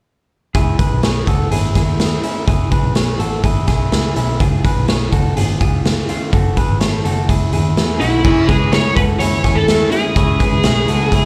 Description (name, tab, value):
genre	jangly indie pop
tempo	125 BPM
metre	4/4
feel	straight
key	C# minor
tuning	A4 = 436 Hz
part	vintage muted picked electric bass	bass	0.5-11.3 s	F#1 to E2	-21 LUFS	equal	none
part	raw garage drum kit	drums	0.5-11.2 s	crash cymbal, hi-hat, kick drum, snare drum	-19 LUFS	equal	none
part	electric guitar through a small old amp	arpeggios	0.6-11.3 s	C#4 to G#5	-25 LUFS	equal	none
part	fuzz lead guitar	melody	8.0-11.3 s	E4 to C#5	-19 LUFS	equal	distortion, slapback echo
part	picked twelve-string acoustic guitar	accompaniment	8.2-11.3 s	C#3 to E4	-25 LUFS	equal	none
room	studio ambience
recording	live gig heard through the venue's PA, club reverb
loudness	-16 LUFS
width	mono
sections	0.5-8.2 A section; 8.2-11.3 B section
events	none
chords	0.5 C#m; 4.4 C#7; 6.3 F#m7; 8.2 C#m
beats	| 0.55 1.03 1.51 2.00 | 2.48 2.96 3.44 3.92 | 4.40 4.88 5.37 5.85 | 6.33 6.81 7.29 7.77 | 8.25 8.73 9.21 9.69 | 10.16 10.64 11.12